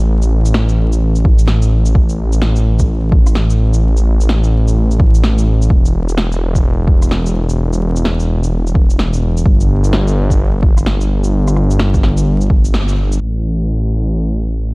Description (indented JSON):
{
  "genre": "future garage",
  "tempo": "128 BPM",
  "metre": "4/4",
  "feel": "swing 62% on 16ths",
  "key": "unclear",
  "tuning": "A4 = 440 Hz",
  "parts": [
    { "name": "swelling detuned saw bass", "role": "bass", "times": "0.0-14.7 s", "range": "E1 to A1", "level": "-13 LUFS", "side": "equal", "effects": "sidechain pumping" },
    { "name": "electronic shaker, snare drum and rim click", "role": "drums", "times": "0.2-14.6 s", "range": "none", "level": "-22 LUFS", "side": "equal", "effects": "vintage 12-bit sampler grit" },
    { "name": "electronic kick drum", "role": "drums", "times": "1.2-12.6 s", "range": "none", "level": "-12 LUFS", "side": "equal", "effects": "vintage 12-bit sampler grit" }
  ],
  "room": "digital ambience",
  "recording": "vinyl crackle, low-pass filter",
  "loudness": "-11 LUFS",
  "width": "side -28 dB against mid",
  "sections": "0.0-13.2 A section; 13.2-14.7 B section",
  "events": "band accent 12.7",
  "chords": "none",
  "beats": "| 0.08 0.55 1.02 1.49 | 1.96 2.43 2.90 3.36 | 3.83 4.30 4.77 5.24 | 5.71 6.18 6.65 7.11 | 7.58 8.05 8.52 8.99 | 9.46 9.93 10.40 10.86 | 11.33 11.80 12.27 12.74 | 13.21 13.68 14.15 14.61"
}